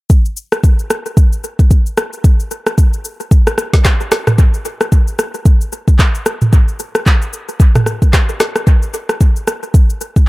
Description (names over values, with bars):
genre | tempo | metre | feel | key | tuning
amapiano | 112 BPM | 4/4 | swing 58% on 16ths | none | none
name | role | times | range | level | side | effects
afro-pop drum kit | drums | 0.1-10.3 s | handclaps, kick drum, rim click, shaker, snare drum, toms | -10 LUFS | equal | none
room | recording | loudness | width
little or no reverb | echo-heavy mix | -11 LUFS | side -21 dB against mid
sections
0.1-10.3 A section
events
none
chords
none